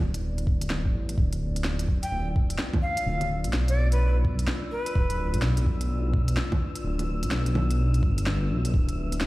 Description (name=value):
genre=future garage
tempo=127 BPM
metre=4/4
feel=swing 64% on 16ths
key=D dorian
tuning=A4 = 440 Hz
part: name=dark analog pad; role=sustained chords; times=0.0-9.3 s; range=G3 to E5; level=-37 LUFS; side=left 2 dB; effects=chorus, sidechain pumping
part: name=dark detuned saw bass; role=bass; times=0.0-9.3 s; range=D1 to B1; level=-25 LUFS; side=equal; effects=tube saturation, sidechain pumping
part: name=electronic kick drum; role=drums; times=0.0-8.9 s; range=none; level=-25 LUFS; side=equal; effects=none
part: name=organic electronic drum kit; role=drums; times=0.1-9.3 s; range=bongos, hi-hat, snare drum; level=-32 LUFS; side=right 1 dB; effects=none
part: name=wind-like tuned noise texture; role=texture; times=2.2-9.3 s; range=E6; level=-43 LUFS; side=left 1 dB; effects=built-in reverb
part: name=breathy bright jazz flute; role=melody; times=2.0-5.4 s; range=B4 to G5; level=-32 LUFS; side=equal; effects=digital delay
room=light reverb, digital ambience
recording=played on a big sound system in a bare room, large studio reverb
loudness=-23 LUFS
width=side -18 dB against mid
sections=0.0-9.3 A section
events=none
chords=0.0 Em/D; 1.2 Dm69; 8.7 Em/D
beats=0.23 0.71 | 1.18 1.65 2.12 2.60 | 3.07 3.54 4.01 4.49 | 4.96 5.43 5.90 6.38 | 6.85 7.32 7.79 8.27 | 8.74 9.21